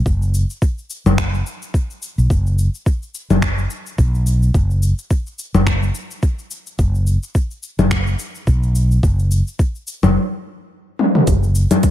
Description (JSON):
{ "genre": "organic downtempo", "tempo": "107 BPM", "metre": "4/4", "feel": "swing 57% on 16ths", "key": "unclear", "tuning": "A4 = 440 Hz", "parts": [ { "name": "mellow fretless electric bass", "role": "bass", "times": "0.1-11.6 s", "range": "F#1 to B1", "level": "-16 LUFS", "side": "equal", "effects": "sidechain pumping" }, { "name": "electronic kick drum", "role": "drums", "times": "0.1-11.9 s", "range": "none", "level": "-17 LUFS", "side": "equal", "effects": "none" }, { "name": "organic electronic drum kit", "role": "drums", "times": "0.1-11.9 s", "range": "congas, finger snaps, hi-hat, shaker, toms", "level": "-19 LUFS", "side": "left 2 dB", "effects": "overdrive" } ], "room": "little or no reverb", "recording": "none", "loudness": "-16 LUFS", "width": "side -12 dB against mid", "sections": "0.0-11.3 A section", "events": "stop 10.2-11.3; drum fill 11.0", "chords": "none" }